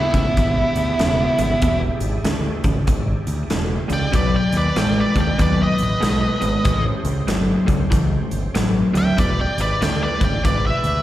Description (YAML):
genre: blues rock power trio and southern rock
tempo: 95 BPM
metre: 4/4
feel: swing 62% on 8ths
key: unclear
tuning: A4 = 441 Hz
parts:
  - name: octave-fuzz lead guitar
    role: melody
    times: 0.0-11.0 s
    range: E4 to G5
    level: -23 LUFS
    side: equal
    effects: distortion, slapback echo
  - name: bluesy overdriven lead guitar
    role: second line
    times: 0.0-11.0 s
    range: B3 to E5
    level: -27 LUFS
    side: right 2 dB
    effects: distortion, slapback echo
  - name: overdriven tonewheel organ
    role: sustained chords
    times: 0.0-11.0 s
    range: G#3 to D5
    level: -34 LUFS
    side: right 2 dB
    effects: slow rotary speaker, chorus vibrato
  - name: crunchy overdriven guitar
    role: riff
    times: 0.0-11.0 s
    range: E2 to G#3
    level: -22 LUFS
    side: equal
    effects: slapback echo
  - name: growling fingered electric bass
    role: bass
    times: 0.1-11.0 s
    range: E1 to D#2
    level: -22 LUFS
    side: equal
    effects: overdrive
  - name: big rock drum kit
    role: drums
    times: 0.1-10.9 s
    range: hi-hat, kick drum, snare drum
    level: -23 LUFS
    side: equal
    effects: none
room: light reverb, small room ambience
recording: live gig heard through the venue's PA, recital hall reverb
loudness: -17 LUFS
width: side -14 dB against mid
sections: 0.0-11.0 A section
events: none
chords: 0.0 E7#9; 4.1 B7; 6.7 A7#9; 9.2 E7#9